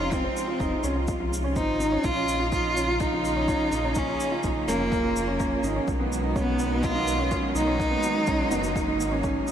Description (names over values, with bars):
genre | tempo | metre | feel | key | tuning
piano and strings electronica | 125 BPM | 4/4 | straight | Bb minor | A4 = 440 Hz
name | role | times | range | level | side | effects
rich cello | melody | 0.0-9.2 s | Bb3 to F4 | -26 LUFS | equal | analog delay
bright studio string section | sustained chords | 0.0-9.5 s | C3 to F4 | -33 LUFS | right 2 dB | none
warm upright piano | riff | 0.0-9.5 s | B3 to F4 | -29 LUFS | right 2 dB | low-pass filter, analog delay
round analog bass | bass | 0.0-9.4 s | F1 to C2 | -31 LUFS | left 1 dB | sidechain pumping
electronic kick drum | drums | 0.1-9.3 s | none | -32 LUFS | left 1 dB | overdrive
shaker | drums | 0.1-9.5 s | none | -40 LUFS | left 1 dB | none
room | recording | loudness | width
wet huge ambient reverb, RT60 8.2 s | dreamy mix soaked in reverb | -23 LUFS | side -9 dB against mid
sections
0.0-9.5 A section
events
fade-in on string section 0.0-9.5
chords
0.0 Fm; 2.0 Bbm; 5.9 B6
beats
| 0.12 0.60 1.08 1.56 | 2.04 2.52 3.00 3.48 | 3.96 4.44 4.92 5.40 | 5.88 6.36 6.84 7.32 | 7.80 8.28 8.76 9.24